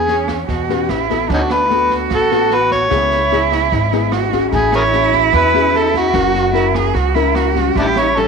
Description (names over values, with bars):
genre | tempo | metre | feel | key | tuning
bossa nova | 149 BPM | 4/4 | straight | A major | A4 = 441 Hz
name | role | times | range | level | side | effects
overdriven harmonica | melody | 0.0-8.3 s | C#4 to C#5 | -16 LUFS | left 1 dB | none
warm cello | second line | 0.0-8.3 s | C#4 to G#4 | -18 LUFS | right 10 dB | none
nylon-string guitar | accompaniment | 0.0-8.3 s | G#2 to C#5 | -20 LUFS | left 11 dB | none
upright bass | bass | 0.0-8.3 s | F#1 to E2 | -22 LUFS | equal | none
open jazz drum kit | drums | 0.1-8.2 s | kick drum, rim click, snare drum | -26 LUFS | right 4 dB | none
room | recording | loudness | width
moderate echo chamber reverb, RT60 1.9 s, studio ambience | 1960s-style stereo with parts hard left and right | -12 LUFS | side -5 dB against mid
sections
0.0-8.3 A section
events
none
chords
0.0 E69; 0.9 A9; 1.3 D6; 2.9 C#m7; 4.5 Amaj13; 6.1 F#7; 7.8 A7b13